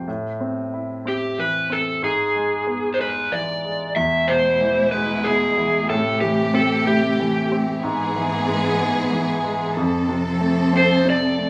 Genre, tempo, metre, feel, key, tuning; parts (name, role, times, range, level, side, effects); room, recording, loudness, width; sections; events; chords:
six-eight pop ballad; 62 BPM (dotted quarters); 6/8; straight; A4 = 440 Hz
clear baby grand piano; accompaniment; 0.0-11.5 s; E2 to E4; -27 LUFS; equal; plate reverb
overdriven slide guitar; melody; 1.1-7.6, 10.8-11.5 s; G4 to E5; -22 LUFS; equal
rich studio string section; sustained chords; 4.0-11.5 s; G#2 to A4; -24 LUFS; equal; plate reverb
wet small room reverb, RT60 0.5 s; rough home demo mix, small room ambience, faint mains hum; -21 LUFS; mono
0.0-4.0 A section; 4.0-11.5 B section
0.1 Am; 2.0 E7/G#; 4.0 E; 5.9 Am7; 7.8 E/G#; 9.8 F